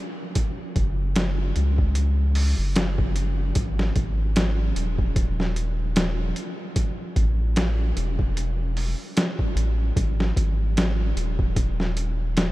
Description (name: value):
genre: trip hop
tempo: 75 BPM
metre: 4/4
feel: swing 56% on 16ths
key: unclear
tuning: A4 = 443 Hz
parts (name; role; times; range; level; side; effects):
- boom bap sampler-style drum kit; drums; 0.4-12.5 s; hi-hat, kick drum, snare drum; -25 LUFS; equal; none
- round analog bass; bass; 0.8-12.5 s; D#1 to C#2; -23 LUFS; equal; none
room: light reverb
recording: none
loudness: -21 LUFS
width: side -18 dB against mid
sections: 0.0-12.5 A section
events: none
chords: none